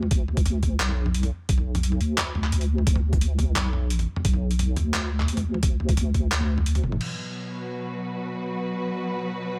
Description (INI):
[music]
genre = half-time drum and bass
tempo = 174 BPM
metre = 4/4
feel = half-time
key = B minor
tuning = A4 = 439 Hz
[part]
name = deep soft wobble bass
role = bass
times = 0.0-7.0 s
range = F#1 to D2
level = -26 LUFS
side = equal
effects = chorus
[part]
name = boom bap sampler-style drum kit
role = drums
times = 0.0-7.1 s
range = crash cymbal, handclaps, hi-hat, toms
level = -31 LUFS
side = equal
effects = overdrive
[part]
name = electronic kick drum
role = drums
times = 0.1-6.2 s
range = none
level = -25 LUFS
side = equal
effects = overdrive
[part]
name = rich studio string section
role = sustained chords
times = 7.0-9.6 s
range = B2 to B4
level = -31 LUFS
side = equal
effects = sidechain pumping
[sound]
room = light reverb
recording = none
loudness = -25 LUFS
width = mono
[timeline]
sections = 0.0-7.0 A section; 7.0-9.6 B section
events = drum fill 6.8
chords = 0.0 B5